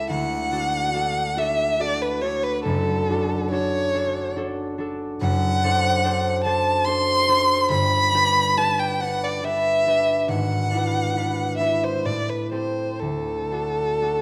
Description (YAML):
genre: classical, romantic duo for violin and harp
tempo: 60-74 BPM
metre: 3/4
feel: rubato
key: D major, G major from 5.2 s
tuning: A4 = 440 Hz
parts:
  - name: warm violin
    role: melody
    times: 0.0-14.2 s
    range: A4 to C6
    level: -24 LUFS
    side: equal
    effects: none
  - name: concert harp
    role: accompaniment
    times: 0.0-14.2 s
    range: F#1 to C5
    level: -27 LUFS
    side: equal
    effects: none
room: moderate recital hall reverb, RT60 1.4 s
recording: dark, warm production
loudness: -22 LUFS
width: mono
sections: 0.0-14.2 A section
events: none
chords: 0.1 D; 2.7 D/F#; 5.2 D7/F#; 7.7 G; 10.3 E7/G#; 12.0 Am7; 13.0 D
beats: | 0.09 0.94 1.79 | 2.66 3.51 4.37 | 5.21 6.04 6.86 | 7.71 8.57 9.42 | 10.28 11.15 12.05 | 13.01 14.00